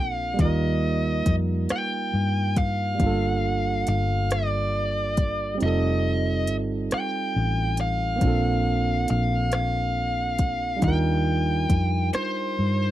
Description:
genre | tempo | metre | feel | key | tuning
slow six-eight R&B | 46 BPM (dotted quarters) | 6/8 | straight | unclear | A4 = 445 Hz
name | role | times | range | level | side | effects
bluesy overdriven lead guitar | melody | 0.0-12.9 s | C5 to G5 | -28 LUFS | left 1 dB | distortion
barky tine electric piano | accompaniment | 0.0-12.9 s | G3 to Bb4 | -28 LUFS | right 5 dB | overdrive
hollow-body short-scale fingered electric bass | bass | 0.0-12.9 s | F1 to G2 | -25 LUFS | left 1 dB | none
smooth R&B drum kit | drums | 0.4-12.3 s | hi-hat, kick drum, rim click | -25 LUFS | left 1 dB | none
room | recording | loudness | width
little or no reverb | dry, close 1970s-style studio recording | -22 LUFS | side -13 dB against mid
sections
0.0-12.9 A section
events
kick muted 5.6-8.2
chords
0.4 Ebadd9; 3.0 Gm9; 5.6 F9; 8.2 Bbmaj9; 10.8 Ebmaj9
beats
| 0.39 1.70 | 3.00 4.30 | 5.61 6.91 | 8.22 9.52 | 10.82 12.13

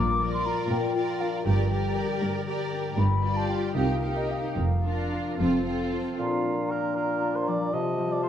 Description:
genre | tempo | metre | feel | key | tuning
classical, dramatic, fast romantic movement for symphony orchestra | 73-81 BPM (dotted quarters) | 6/8 | rubato | Bb major | A4 = 440 Hz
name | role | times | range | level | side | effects
mellow hollow concert flute | second line | 0.0-8.3 s | Eb5 to D6 | -33 LUFS | left 1 dB | none
concert harp | arpeggios | 0.0-8.3 s | G2 to Bb4 | -31 LUFS | left 6 dB | none
rich symphonic double bass section | bass | 0.0-5.9 s | F1 to C2 | -29 LUFS | right 2 dB | none
warm symphonic cello section | bass | 0.0-6.1 s | F2 to C3 | -31 LUFS | right 1 dB | none
rich symphonic violin section | melody | 0.2-6.2 s | A4 to D5 | -38 LUFS | right 1 dB | none
rich symphonic violin section | second line | 0.2-6.2 s | F4 to Bb4 | -35 LUFS | equal | none
warm symphonic viola section | accompaniment | 0.2-6.2 s | C4 to G4 | -32 LUFS | right 1 dB | none
dark clarinet | second line | 6.2-8.3 s | D4 to F4 | -32 LUFS | left 3 dB | none
mellow cor anglais | second line | 6.2-8.3 s | F4 to Eb5 | -31 LUFS | right 3 dB | none
clear bassoon | accompaniment | 6.2-8.3 s | Bb2 to C3 | -30 LUFS | right 1 dB | none
room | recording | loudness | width
wet stone room reverb, RT60 1.1 s | dark, warm production | -24 LUFS | side -9 dB against mid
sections
0.0-6.2 A section; 6.2-8.3 B section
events
none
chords
0.0 Bb; 1.5 Gm; 3.0 G7; 3.8 Cm7; 4.6 Bb/F; 5.4 F; 6.2 Bb; 7.7 F7/C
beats
0.71 | 1.46 2.21 | 2.98 3.76 | 4.57 5.39 | 6.19 6.96 | 7.73

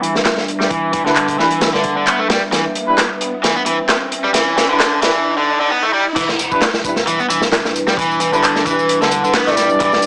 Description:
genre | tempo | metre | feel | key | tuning
breakbeat, breaks | 132 BPM | 4/4 | swing 54% on 16ths | E minor | A4 = 440 Hz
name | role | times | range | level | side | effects
dark analog pad | sustained chords | 0.0-10.1 s | G3 to E5 | -26 LUFS | equal | chorus, sidechain pumping
crunchy overdriven guitar | riff | 0.0-9.9 s | D3 to B3 | -20 LUFS | equal | tube saturation, low-pass filter, digital delay
crunchy breakbeat drum kit | drums | 0.0-10.1 s | crash cymbal, hi-hat, kick drum, snare drum | -21 LUFS | equal | none
riser | sound effects | 2.7-6.2 s | none | -29 LUFS | equal | none
electronic handclaps and tambourine | drums | 0.2-10.1 s | none | -22 LUFS | equal | high-pass filter on perc, high-pass filter on snare
warm brass ensemble | stabs | 1.1-10.1 s | G3 to D5 | -20 LUFS | equal | vintage 12-bit sampler grit, digital delay
saturated sub bass | bass | 6.2-10.1 s | D1 to E1 | -42 LUFS | equal | tube saturation
room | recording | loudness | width
moderate studio reverb, RT60 0.6 s | high-pass filter, small speaker sound | -16 LUFS | mono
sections
0.0-6.2 A section; 6.2-10.1 B section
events
build-up 0.0-6.2; filter sweep on overdriven electric guitar 0.0-6.2; drum fill 2.5-5.3; riser 2.7-6.2; drop 6.2-10.1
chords
0.0 Em7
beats
0.26 | 0.71 1.17 1.62 2.07 | 2.53 2.98 3.44 3.89 | 4.35 4.80 5.26 5.71 | 6.17 6.62 7.07 7.53 | 7.98 8.44 8.89 9.35 | 9.80

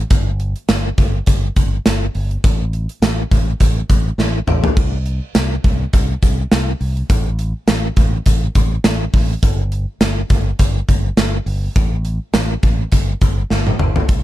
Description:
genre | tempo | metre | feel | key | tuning
1980s-style pop | 103 BPM | 4/4 | swing 55% on 16ths | unclear | A4 = 439 Hz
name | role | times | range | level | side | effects
fingered electric bass | bass | 0.0-14.2 s | G1 to C2 | -19 LUFS | equal | none
gated 80s drum kit | drums | 0.1-14.2 s | crash cymbal, hi-hat, kick drum, snare drum, tambourine, toms | -15 LUFS | equal | none
room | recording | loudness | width
little or no reverb | none | -14 LUFS | side -14 dB against mid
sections
0.0-14.1 A section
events
drum fill 4.2-4.8, 13.5-14.1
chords
none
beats
| 0.11 0.69 1.27 1.86 | 2.44 3.02 3.60 4.19 | 4.77 5.35 5.93 6.52 | 7.10 7.68 8.27 8.85 | 9.43 10.01 10.60 11.18 | 11.76 12.34 12.93 13.51 | 14.09

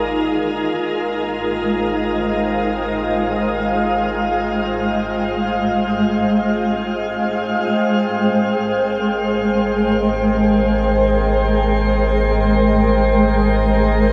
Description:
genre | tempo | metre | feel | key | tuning
ambient | free time | none | none | Ab major | A4 = 445 Hz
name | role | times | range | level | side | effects
granular cloud pad | sustained chords | 0.0-14.1 s | Ab3 to G5 | -19 LUFS | equal | built-in reverb
warm sub bass | bass | 0.0-14.1 s | Ab1 | -27 LUFS | equal | none
organ-like drone | drone | 0.0-7.7 s | Ab3 to Ab4 | -33 LUFS | equal | ensemble chorus, built-in reverb
wind-like tuned noise texture | texture | 0.0-7.7 s | F4 to F5 | -29 LUFS | equal | built-in reverb
room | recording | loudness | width
wet shimmer reverb, RT60 8.3 s | none | -18 LUFS | mono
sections
0.0-7.6 A section; 7.6-14.1 B section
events
fade-out on sub bass 0.0-7.6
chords
0.0 Fmadd9/Ab; 7.6 Abmaj7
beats
free time

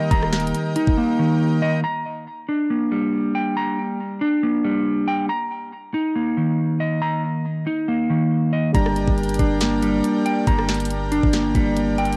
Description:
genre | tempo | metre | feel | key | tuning
hip hop, trap | 139 BPM | 4/4 | half-time | G minor | A4 = 445 Hz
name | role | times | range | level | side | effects
soft electric-piano-like synth keys | accompaniment | 0.0-1.9, 8.7-12.2 s | G3 to G4 | -31 LUFS | equal | chorus, cassette tape
accordion | sustained chords | 0.0-1.8, 8.7-12.2 s | D4 to G5 | -31 LUFS | equal | cassette tape
clean electric guitar | arpeggios | 0.0-12.2 s | Eb3 to Bb5 | -22 LUFS | equal | cassette tape, tape echo
long sustained 808-style bass | bass | 0.1-1.0, 8.7-12.2 s | Eb1 to G1 | -28 LUFS | equal | none
trap drum kit | drums | 0.1-1.0, 8.7-12.2 s | hi-hat, kick drum, rim click, snare drum | -24 LUFS | equal | cassette tape
room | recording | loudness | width
light reverb | home recording on cassette | -21 LUFS | mono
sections
0.0-1.8 A section; 1.8-12.2 A section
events
drums muted 1.0-1.8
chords
0.0 Eb; 1.8 Gm; 5.3 Eb5; 8.7 Gm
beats
| 0.11 0.54 0.97 1.41 | 1.84 2.27 2.70 3.13 | 3.56 4.00 4.43 4.86 | 5.29 5.72 6.16 6.59 | 7.02 7.45 7.88 8.31 | 8.74 9.18 9.61 10.04 | 10.47 10.90 11.34 11.77

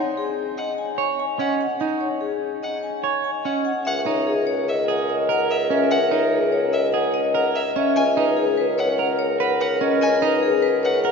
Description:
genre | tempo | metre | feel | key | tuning
classical, minimalist pattern music | 146 BPM | 5/4 | straight | C# dorian | A4 = 440 Hz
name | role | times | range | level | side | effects
vibraphone with medium hard mallets | melody | 0.0-11.1 s | G#4 to G#5 | -22 LUFS | left 5 dB | none
clear violin | arpeggios | 0.6-11.0 s | E5 to G#5 | -32 LUFS | left 1 dB | none
electric guitar at the edge of break-up | arpeggios | 1.0-11.1 s | C#4 to C#5 | -25 LUFS | right 5 dB | none
clear clarinet | second line | 3.9-11.1 s | A#4 | -27 LUFS | equal | none
mellow bassoon | bass | 3.9-11.1 s | C#2 | -25 LUFS | right 2 dB | none
room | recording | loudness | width
wet cathedral reverb, RT60 6.0 s | recorded in a church or concert hall, nothing above 7.5 kHz | -19 LUFS | side -5 dB against mid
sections
0.0-3.9 A section; 3.9-11.1 A section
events
none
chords
0.0 D#m7; 3.9 C#m69; 8.0 Bmaj9/C#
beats
0.16 0.57 0.98 1.39 | 1.80 2.21 2.62 3.04 3.45 | 3.86 4.27 4.68 5.09 5.50 | 5.91 6.32 6.73 7.14 7.56 | 7.97 8.38 8.79 9.20 9.61 | 10.02 10.43 10.84

